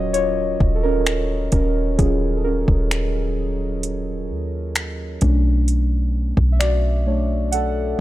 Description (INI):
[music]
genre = contemporary R&B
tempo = 65 BPM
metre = 4/4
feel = straight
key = Eb minor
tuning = A4 = 440 Hz
[part]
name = muted felt-like synth keys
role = accompaniment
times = 0.0-8.0 s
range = Gb3 to F#5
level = -22 LUFS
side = equal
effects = chorus
[part]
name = soft 808-style bass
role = bass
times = 0.0-7.9 s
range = Eb1 to Eb2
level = -21 LUFS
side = equal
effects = none
[part]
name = smooth R&B drum kit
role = drums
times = 0.1-7.7 s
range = finger snaps, hi-hat, kick drum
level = -20 LUFS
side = equal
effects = overdrive
[sound]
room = digital ambience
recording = dry, gritty hardware recording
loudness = -18 LUFS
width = side -15 dB against mid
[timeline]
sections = 0.0-8.0 A section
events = synth keys solo 0.0-8.0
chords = 0.0 Ebm9; 5.2 Bm9